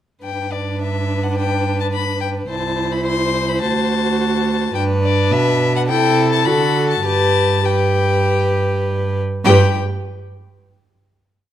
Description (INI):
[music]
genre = quick classical-period movement for string quartet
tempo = 98-107 BPM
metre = 4/4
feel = straight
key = G major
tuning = A4 = 440 Hz
[part]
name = warm violin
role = melody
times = 0.2-9.8 s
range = D5 to C6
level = -22 LUFS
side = left 9 dB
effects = none
[part]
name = warm violin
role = second line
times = 0.2-9.8 s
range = A4 to C5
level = -21 LUFS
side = left 2 dB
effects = none
[part]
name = warm viola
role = accompaniment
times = 0.2-9.8 s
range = D4 to G4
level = -22 LUFS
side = right 1 dB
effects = none
[part]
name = rich cello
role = bass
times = 0.2-9.8 s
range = C2 to D3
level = -20 LUFS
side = right 4 dB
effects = none
[sound]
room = moderate recital hall reverb, RT60 1.5 s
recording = none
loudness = -15 LUFS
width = side -11 dB against mid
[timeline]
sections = 0.2-9.4 A section; 9.4-11.5 final chord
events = none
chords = 0.2 G; 2.5 C6; 3.6 D7; 4.7 G; 5.9 Am/C; 6.5 D; 7.0 G; 9.4 N.C.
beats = | 0.23 0.81 1.37 1.93 | 2.49 3.05 3.62 4.18 | 4.75 5.32 5.89 6.46 | 7.04 7.64 8.24 8.84 | 9.45